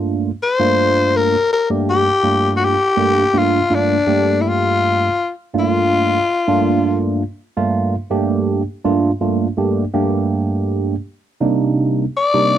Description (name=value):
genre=blues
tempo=82 BPM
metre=4/4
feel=swing 54% on 16ths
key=G minor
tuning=A4 = 439 Hz
part: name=tine electric piano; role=accompaniment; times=0.0-12.6 s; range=G2 to G4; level=-17 LUFS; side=right 2 dB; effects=phaser
part: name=growling tenor saxophone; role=melody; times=0.4-7.0, 12.2-12.6 s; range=D4 to D5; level=-15 LUFS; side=left 3 dB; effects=none
room=light reverb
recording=dry, close 1970s-style studio recording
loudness=-15 LUFS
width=side -10 dB against mid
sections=0.0-12.6 A section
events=none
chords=0.0 Gm7; 11.4 Cm7